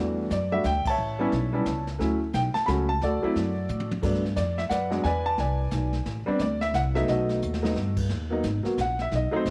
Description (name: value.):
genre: jazz piano trio.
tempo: 177 BPM.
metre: 3/4.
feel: swing 62% on 8ths.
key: E minor.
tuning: A4 = 440 Hz.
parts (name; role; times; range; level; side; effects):
warm concert grand piano; melody; 0.0-9.5 s; E2 to B5; -29 LUFS; equal; none.
upright bass; bass; 0.0-9.5 s; G#1 to A2; -31 LUFS; equal; none.
jazz brush drum kit; drums; 0.3-9.5 s; brushed snare drum, crash cymbal, hi-hat, kick drum, snare drum, toms; -37 LUFS; equal; none.
room: moderate echo chamber reverb, RT60 1.4 s, small room ambience.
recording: none.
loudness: -26 LUFS.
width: mono.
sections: 0.0-8.1 A section; 8.1-9.5 B section.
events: band accent 0.8; drum fill 3.7-4.0, 7.4-7.8; grand piano solo 8.1-9.5.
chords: 0.0 Em11; 1.0 A7; 2.0 Dmaj7; 3.0 D; 4.0 Gmaj7; 5.1 E7; 6.1 Amadd9; 7.1 B7; 8.1 G#m9.